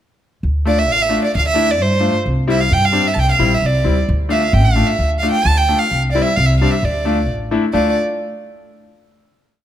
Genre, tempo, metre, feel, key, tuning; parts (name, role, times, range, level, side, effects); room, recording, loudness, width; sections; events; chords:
klezmer; 131 BPM; 2/4; straight; D minor; A4 = 439 Hz
upright bass; bass; 0.4-8.0 s; A1 to G2; -17 LUFS; equal
rich violin; melody; 0.7-8.0 s; C5 to A5; -17 LUFS; right 2 dB
bright upright piano; accompaniment; 0.7-8.0 s; G3 to F4; -19 LUFS; left 3 dB
moderate recital hall reverb, RT60 1.7 s; -13 LUFS; side -10 dB against mid
0.4-7.7 A section; 7.7-8.7 final chord
0.4 Dm; 2.3 C; 4.1 Dm; 5.9 C; 6.8 D5; 7.7 Dm